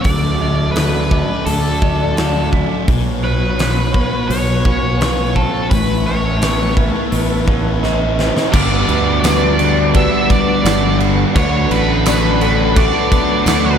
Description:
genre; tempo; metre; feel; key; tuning
rock, shoegaze and dream pop; 85 BPM; 4/4; straight; D major; A4 = 439 Hz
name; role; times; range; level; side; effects
octave-fuzz lead guitar; melody; 0.0-13.8 s; A4 to E5; -21 LUFS; equal; distortion, digital delay
chorused pulse-width pad; sustained chords; 0.0-13.8 s; A4 to D6; -27 LUFS; equal; none
fingerpicked twelve-string acoustic guitar; arpeggios; 0.0-13.8 s; E3 to A4; -25 LUFS; left 9 dB; ensemble chorus, digital delay
electric guitar through a small old amp; riff; 0.0-13.8 s; A2 to F#4; -22 LUFS; right 11 dB; reverse reverb
thick fuzz guitar; riff; 0.0-13.8 s; G2 to C#5; -22 LUFS; left 9 dB; distortion, wide subtle chorus
fuzz fingered electric bass; bass; 0.0-13.8 s; G1 to D2; -18 LUFS; equal; overdrive
huge arena drum kit; drums; 0.0-13.6 s; crash cymbal, hi-hat, kick drum, snare drum; -18 LUFS; equal; none
overdriven electric guitar; riff; 8.5-13.8 s; G2 to D4; -21 LUFS; right 1 dB; none
tambourine; percussion; 9.2-13.6 s; none; -30 LUFS; right 7 dB; none
room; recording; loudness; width
light reverb, small room reverb; none; -13 LUFS; side -8 dB against mid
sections
0.0-8.5 A section; 8.5-13.8 B section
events
drum fill 7.8-8.5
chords
0.1 D; 2.9 Bsus2; 5.7 Aadd9; 8.5 Gmaj7; 11.4 D6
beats
| 0.06 0.76 1.47 2.18 | 2.88 3.59 4.30 5.00 | 5.71 6.42 7.12 7.83 | 8.54 9.24 9.95 10.65 | 11.36 12.06 12.77 13.47

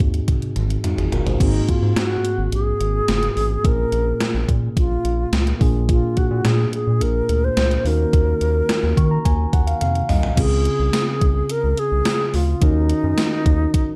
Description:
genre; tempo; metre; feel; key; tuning
1980s-style pop; 107 BPM; 4/4; straight; unclear; A4 = 438 Hz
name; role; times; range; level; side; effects
mellow tine electric piano; accompaniment; 0.0-14.0 s; Ab2 to Db6; -26 LUFS; equal; none
round analog bass; bass; 0.0-13.7 s; Gb1 to Eb3; -23 LUFS; equal; none
gated 80s digital drum machine; drums; 0.0-13.9 s; crash cymbal, hi-hat, kick drum, snare drum, tambourine, toms; -23 LUFS; equal; gated reverb, gated reverb snare, overdrive
alto flute; melody; 1.4-14.0 s; Eb4 to C5; -25 LUFS; equal; none
room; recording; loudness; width
moderate small room reverb, RT60 0.5 s; dark, warm production; -19 LUFS; mono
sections
0.0-1.4 A section; 1.4-10.4 B section; 10.4-14.0 C section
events
drum fill 0.3-1.4, 9.8-10.4; tine electric piano fill 8.7-10.4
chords
0.0 Ab7; 1.4 Ab9; 3.6 Bbm7; 5.6 Bb7; 7.9 Ebm7; 10.4 Dbmaj7; 12.6 Ebm7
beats
0.28 0.84 | 1.40 1.96 2.52 3.08 | 3.65 4.21 4.77 5.33 | 5.89 6.45 7.01 7.57 | 8.13 8.69 9.25 9.81 | 10.37 10.94 11.50 12.06 | 12.62 13.18 13.74

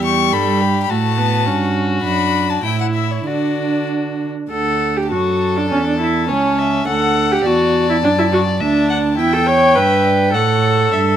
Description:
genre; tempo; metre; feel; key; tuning
quick classical-period movement for string quartet; 96-107 BPM; 2/4; rubato; D major; A4 = 440 Hz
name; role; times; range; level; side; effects
warm violin; melody; 0.0-11.2 s; C#5 to C#6; -22 LUFS; left 11 dB; none
rich violin; second line; 0.0-11.0 s; E4 to G5; -22 LUFS; left 3 dB; none
rich viola; accompaniment; 0.0-11.2 s; G3 to C#5; -17 LUFS; right 1 dB; none
warm cello; bass; 0.0-11.2 s; C#2 to D3; -20 LUFS; right 4 dB; none
room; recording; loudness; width
light reverb; close, detailed microphones; -14 LUFS; side -10 dB against mid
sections
0.0-4.5 A section; 4.5-11.2 A section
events
none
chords
0.0 Em; 0.9 F#madd11/A; 1.5 A7/G; 2.0 D/F#; 2.6 A5; 3.3 D; 5.7 A/E; 6.9 D; 8.0 D/F#; 9.2 Em; 10.3 A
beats
0.33 | 0.90 1.46 | 2.04 2.64 | 3.26 3.88 | 4.50 5.11 | 5.70 6.29 | 6.87 7.45 | 8.03 8.60 | 9.18 9.76 | 10.34 10.93

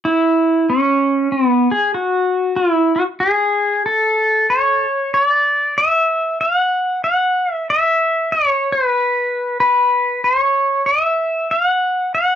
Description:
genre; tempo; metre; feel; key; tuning
hawaiian; 94 BPM; 4/4; swing 63% on 8ths; A major; A4 = 437 Hz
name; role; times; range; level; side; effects
pedal steel guitar; solo; 0.1-12.4 s; B3 to F#5; -14 LUFS; equal; none
room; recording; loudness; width
light reverb; dry, close 1970s-style studio recording; -14 LUFS; side -9 dB against mid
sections
0.0-5.1 A section; 5.1-12.4 B section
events
none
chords
none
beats
| 0.04 0.67 1.31 1.95 | 2.58 3.22 3.85 4.49 | 5.13 5.76 6.40 7.04 | 7.67 8.31 8.94 9.58 | 10.22 10.85 11.49 12.13

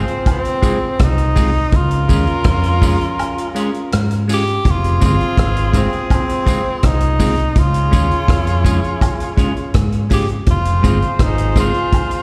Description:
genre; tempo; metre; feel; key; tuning
roots reggae; 82 BPM; 4/4; straight; F minor; A4 = 440 Hz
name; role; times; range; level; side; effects
breathy tenor saxophone; melody; 0.0-12.2 s; C4 to G4; -23 LUFS; equal; tape echo, plate reverb
clear horn section; second line; 0.0-12.2 s; C4 to Db5; -29 LUFS; equal; tape echo, plate reverb, slapback echo
clean electric guitar; accompaniment; 0.0-11.7 s; Ab3 to Ab4; -26 LUFS; equal; tape echo, plate reverb, slapback echo
vintage muted fingered electric bass; bass; 0.0-11.7 s; F1 to Ab2; -19 LUFS; equal; none
vintage drum kit; drums; 0.1-12.2 s; hi-hat, kick drum, rim click; -20 LUFS; equal; none
woodblock and tambourine; percussion; 0.3-12.1 s; none; -32 LUFS; equal; none
room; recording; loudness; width
light reverb; live gig heard through the venue's PA, recital hall reverb; -16 LUFS; mono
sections
0.0-12.2 A section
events
break 3.2-4.6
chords
0.0 Fm; 1.7 Db; 4.6 Fm; 7.6 Db; 10.5 Fm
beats
0.27 1.00 | 1.73 2.46 3.19 3.92 | 4.65 5.38 6.11 6.83 | 7.56 8.29 9.02 9.75 | 10.48 11.21 11.93

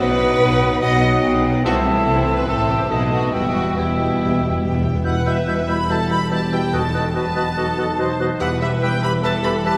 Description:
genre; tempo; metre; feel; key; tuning
quick classical-period movement for symphony orchestra; 144 BPM; 4/4; straight; E minor; A4 = 442 Hz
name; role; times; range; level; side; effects
warm studio violin section; melody; 0.0-9.8 s; C5 to B5; -30 LUFS; equal; none
bright silver concert flute; second line; 0.0-9.7 s; F#5 to G6; -29 LUFS; equal; none
clear clarinet; second line; 0.0-9.8 s; B3 to G4; -31 LUFS; equal; none
warm oboe; second line; 0.0-9.8 s; B4 to E5; -29 LUFS; equal; none
warm studio violin section; second line; 0.0-9.8 s; E4 to B5; -28 LUFS; equal; none
mellow bassoon; accompaniment; 0.0-9.7 s; B2 to F#3; -29 LUFS; equal; none
warm studio viola section; accompaniment; 0.0-9.8 s; G3 to C5; -30 LUFS; equal; none
dark French horn section; sustained chords; 0.0-9.8 s; F#3 to E4; -29 LUFS; equal; none
rich studio double bass section; bass; 0.0-9.8 s; E1 to C2; -28 LUFS; equal; none
warm studio cello section; bass; 0.0-9.8 s; E2 to C3; -27 LUFS; equal; none
timpani; percussion; 3.3-9.0 s; E2; -31 LUFS; equal; none
room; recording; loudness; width
wet concert hall reverb, RT60 2.5 s; recorded in a church or concert hall; -19 LUFS; mono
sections
0.0-5.1 A section; 5.1-9.8 A section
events
timpani fill 3.3-5.1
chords
0.0 B; 1.7 Am/C; 2.5 Am; 2.9 B7; 3.3 Em; 6.7 B7/E; 8.4 Em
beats
| 0.00 0.41 0.82 1.24 | 1.65 2.07 2.48 2.91 | 3.34 3.77 4.20 4.62 | 5.05 5.48 5.90 6.31 | 6.73 7.16 7.57 7.99 | 8.41 8.83 9.24 9.66

